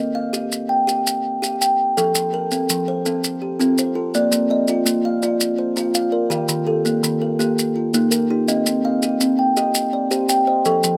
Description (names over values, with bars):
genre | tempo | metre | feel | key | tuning
southern african traditional, mbira-style interlocking cycle | 110 BPM (dotted quarters) | 12/8 | straight | unclear | A4 = 440 Hz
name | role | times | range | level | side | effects
kalimba | arpeggios | 0.0-11.0 s | Eb3 to G5 | -22 LUFS | equal | none
maracas | percussion | 0.3-11.0 s | none | -24 LUFS | equal | none
kalimba | arpeggios | 2.1-11.0 s | Eb3 to Eb5 | -24 LUFS | equal | none
room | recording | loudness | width
light reverb | recorded outdoors, with no room sound | -19 LUFS | mono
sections
0.0-10.7 A section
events
none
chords
0.0 Cm (rootless); 2.0 F; 4.1 Bb; 6.3 Eb; 8.5 Cm